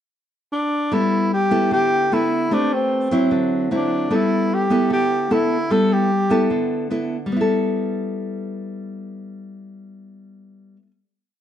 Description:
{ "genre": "bossa nova", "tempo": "151 BPM", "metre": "4/4", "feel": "straight", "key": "G major", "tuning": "A4 = 441 Hz", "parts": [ { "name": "breathy tenor saxophone", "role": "melody", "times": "0.5-6.5 s", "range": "C4 to A4", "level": "-20 LUFS", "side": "equal", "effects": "none" }, { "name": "nylon-string guitar", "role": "accompaniment", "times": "0.9-10.9 s", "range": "D3 to B4", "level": "-20 LUFS", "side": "equal", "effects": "none" } ], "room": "wet stone room reverb, RT60 1.1 s", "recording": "band playing live in one room, nothing above 10.5 kHz", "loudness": "-17 LUFS", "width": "side -10 dB against mid", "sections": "0.0-0.9 pickup bar; 0.9-7.3 A section; 7.3-10.5 final chord", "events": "none", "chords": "0.0 N.C.; 0.9 G69; 2.5 Am9; 3.3 D9; 4.1 G69" }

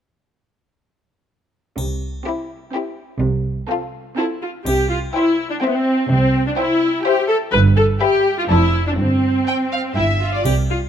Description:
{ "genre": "cinematic, playful, whimsical film cue", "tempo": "124 BPM", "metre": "3/4", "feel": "straight", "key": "C major", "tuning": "A4 = 440 Hz", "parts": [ { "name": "clear studio double bass section", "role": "bass", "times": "1.8-10.8 s", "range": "F1 to C2", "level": "-21 LUFS", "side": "right 2 dB", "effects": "none" }, { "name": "rich studio cello section", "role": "bass", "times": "1.8-10.8 s", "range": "F2 to C3", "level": "-21 LUFS", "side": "right 1 dB", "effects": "none" }, { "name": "triangle", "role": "percussion", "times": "1.8-5.6, 10.5-10.9 s", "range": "none", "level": "-34 LUFS", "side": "left 4 dB", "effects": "none" }, { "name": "rich studio violin section", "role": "melody", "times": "2.3-10.3 s", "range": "G4 to A5", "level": "-29 LUFS", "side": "left 2 dB", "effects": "none" }, { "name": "rich studio violin section", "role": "second line", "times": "2.3-10.5 s", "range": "E4 to G5", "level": "-24 LUFS", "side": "left 3 dB", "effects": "none" }, { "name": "rich studio viola section", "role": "accompaniment", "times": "2.3-10.8 s", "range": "B3 to B4", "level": "-18 LUFS", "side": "equal", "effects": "none" } ], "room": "light reverb", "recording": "close, detailed microphones", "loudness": "-16 LUFS", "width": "side -9 dB against mid", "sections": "1.8-4.7 A section; 4.7-10.9 B section", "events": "none", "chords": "1.8 C; 3.2 F/C; 4.7 C; 7.5 Em/G; 8.5 Dm7/F; 9.0 C5/G; 10.0 G5" }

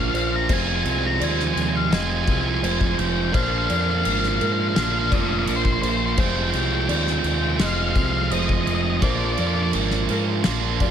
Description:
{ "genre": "post-rock", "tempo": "84 BPM", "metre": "4/4", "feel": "straight", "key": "F dorian", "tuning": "A4 = 436 Hz", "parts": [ { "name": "octave-fuzz lead guitar", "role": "melody", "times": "0.0-9.7 s", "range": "C5 to Bb5", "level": "-26 LUFS", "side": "left 6 dB", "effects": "distortion, slapback echo, tape echo" }, { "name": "felt-muted upright piano", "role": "arpeggios", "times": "0.0-10.9 s", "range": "Bb4 to Eb5", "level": "-34 LUFS", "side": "left 1 dB", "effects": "slapback echo, tape echo" }, { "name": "distorted electric guitar", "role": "riff", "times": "0.0-10.9 s", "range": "F2 to F4", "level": "-24 LUFS", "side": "right 8 dB", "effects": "overdrive, slapback echo" }, { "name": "growling fingered electric bass", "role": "bass", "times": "0.0-10.9 s", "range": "F1 to Ab2", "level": "-25 LUFS", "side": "left 1 dB", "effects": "overdrive" }, { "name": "loose indie drum kit", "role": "drums", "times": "0.1-10.9 s", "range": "crash cymbal, kick drum, snare drum", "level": "-25 LUFS", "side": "left 1 dB", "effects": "none" } ], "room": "light reverb, small room ambience", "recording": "none", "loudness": "-19 LUFS", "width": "side -8 dB against mid", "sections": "0.0-10.9 A section", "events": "none", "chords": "0.5 Fm; 3.3 Bb; 6.2 Fmadd9; 9.0 Bb" }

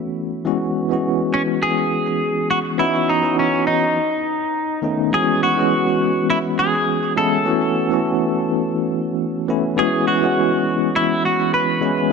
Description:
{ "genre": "chillout", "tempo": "103 BPM", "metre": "4/4", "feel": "swing 56% on 16ths", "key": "E major", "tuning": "A4 = 440 Hz", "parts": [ { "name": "bell-like tine electric piano", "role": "accompaniment", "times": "0.0-12.1 s", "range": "D#3 to F#4", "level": "-19 LUFS", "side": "moving between left 4 dB and right 2 dB", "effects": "medium stereo tremolo, auto-pan, digital delay" }, { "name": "clean electric guitar", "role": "melody", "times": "1.3-12.1 s", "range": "C#4 to B4", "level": "-19 LUFS", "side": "equal", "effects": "wide subtle chorus, digital delay" } ], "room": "moderate plate reverb, RT60 3.2 s", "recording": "dark, warm production", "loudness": "-16 LUFS", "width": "side -5 dB against mid", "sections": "0.0-5.1 A section; 5.1-12.1 B section", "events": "none", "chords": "0.5 E69; 2.8 C#m11; 4.0 B9; 5.1 E69; 7.5 B9sus4; 9.8 E69" }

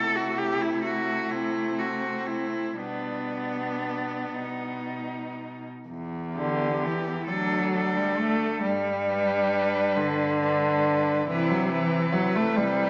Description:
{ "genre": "classical, lyrical piece for cello ensemble", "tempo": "38-48 BPM (dotted quarters)", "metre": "6/8", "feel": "rubato", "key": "E minor", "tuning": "A4 = 445 Hz", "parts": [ { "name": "rich cello", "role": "melody", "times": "0.0-12.9 s", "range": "B3 to B4", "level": "-33 LUFS", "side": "equal", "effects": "none" }, { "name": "warm cello", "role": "second line", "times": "0.0-12.9 s", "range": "B3 to E4", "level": "-36 LUFS", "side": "equal", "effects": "none" }, { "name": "warm cello", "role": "accompaniment", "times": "0.0-12.9 s", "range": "D3 to A3", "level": "-29 LUFS", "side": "equal", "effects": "none" }, { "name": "warm cello", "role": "bass", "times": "0.0-12.9 s", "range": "D2 to C3", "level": "-37 LUFS", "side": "equal", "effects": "none" } ], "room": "wet scoring stage reverb, RT60 1.6 s", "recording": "small speaker sound", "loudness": "-27 LUFS", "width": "mono", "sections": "0.0-5.9 A section; 5.9-12.9 B section", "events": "none", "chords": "0.0 Am/C; 2.8 G/B; 5.9 Em; 7.3 D; 8.6 G; 11.3 Cmaj7" }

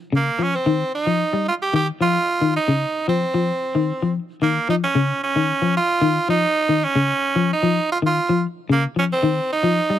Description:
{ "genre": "afrobeat", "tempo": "112 BPM", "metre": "4/4", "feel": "straight", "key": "unclear", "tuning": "A4 = 439 Hz", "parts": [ { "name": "electric guitar at the edge of break-up", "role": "arpeggios", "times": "0.1-10.0 s", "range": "Db3 to G3", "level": "-20 LUFS", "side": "left 4 dB", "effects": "wide subtle chorus" }, { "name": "raspy tenor saxophone", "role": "melody", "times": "0.2-10.0 s", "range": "Bb3 to G4", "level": "-20 LUFS", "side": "right 3 dB", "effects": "none" } ], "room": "little or no reverb", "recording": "dry, close 1970s-style studio recording", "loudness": "-18 LUFS", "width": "side -11 dB against mid", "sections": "0.0-10.0 A section", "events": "none", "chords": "0.0 Bbm; 0.7 Cm; 5.0 Dbadd9; 9.2 Cm" }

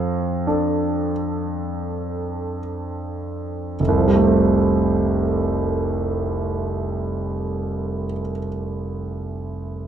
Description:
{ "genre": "classical, impressionist solo piano", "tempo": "free time", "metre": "none", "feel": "none", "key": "F major", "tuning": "A4 = 444 Hz", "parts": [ { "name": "clear concert grand piano", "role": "solo", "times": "0.0-9.9 s", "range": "F1 to F5", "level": "-20 LUFS", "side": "right 1 dB", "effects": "none" } ], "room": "little or no reverb", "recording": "close, detailed microphones", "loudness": "-20 LUFS", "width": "side -9 dB against mid", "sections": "0.0-3.8 A section; 3.8-9.3 B section", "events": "slowing down 0.0-3.8", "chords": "0.0 F6; 3.8 Fadd9" }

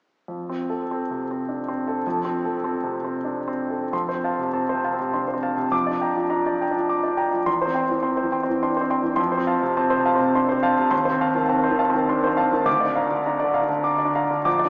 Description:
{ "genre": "classical, romantic character piece for solo piano", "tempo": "86-108 BPM", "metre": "3/4", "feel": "rubato", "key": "F major", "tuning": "A4 = 440 Hz", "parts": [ { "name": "clear grand piano", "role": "solo", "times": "0.3-14.7 s", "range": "Bb1 to D6", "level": "-23 LUFS", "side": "equal", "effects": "none" } ], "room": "wet church reverb, RT60 3.2 s", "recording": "small speaker sound", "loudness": "-23 LUFS", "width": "mono", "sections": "0.3-3.9 A section; 3.9-14.7 B section", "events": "none", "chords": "0.3 F; 5.7 Gm7/F; 7.5 C/E; 9.2 F; 10.9 F7/Eb; 12.7 Bb/D" }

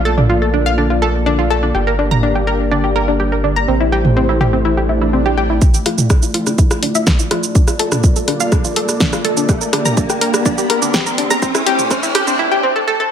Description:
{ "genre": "melodic techno", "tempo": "124 BPM", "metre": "4/4", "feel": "straight", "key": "D minor", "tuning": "A4 = 440 Hz", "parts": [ { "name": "dark analog pad", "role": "sustained chords", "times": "0.0-12.4 s", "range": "A3 to D5", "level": "-21 LUFS", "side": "left 1 dB", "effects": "chorus, sidechain pumping" }, { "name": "round analog bass", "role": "bass", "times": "0.0-5.6 s", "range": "G1 to Bb1", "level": "-18 LUFS", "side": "equal", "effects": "sidechain pumping" }, { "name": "analog pluck", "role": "arpeggios", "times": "0.1-13.1 s", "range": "C4 to Bb5", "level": "-17 LUFS", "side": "equal", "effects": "chorus, sidechain pumping, dub echo" }, { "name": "house drum kit", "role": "drums", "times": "0.2-12.4 s", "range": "hi-hat, rim click, shaker, snare drum, toms", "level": "-18 LUFS", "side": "right 1 dB", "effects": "none" }, { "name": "swell and riser", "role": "sound effects", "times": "4.8-12.4 s", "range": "none", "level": "-24 LUFS", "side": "right 1 dB", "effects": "none" }, { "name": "electronic kick drum", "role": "drums", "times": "5.6-12.0 s", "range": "none", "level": "-14 LUFS", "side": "equal", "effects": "none" } ], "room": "moderate digital room reverb, RT60 1.1 s, digital ambience", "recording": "high-pass filter", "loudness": "-12 LUFS", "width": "side -8 dB against mid", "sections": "0.0-5.6 A section; 5.6-13.1 B section", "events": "swell 4.8-5.6; build-up 5.6-13.1; riser 5.6-12.4; filter sweep on synth arpeggio sound 5.6-13.1", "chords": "0.0 Bbmaj7; 1.7 Gm; 3.7 Am7; 5.6 Dmadd9; 7.6 Bbmaj7; 9.5 Gm; 11.4 Am7" }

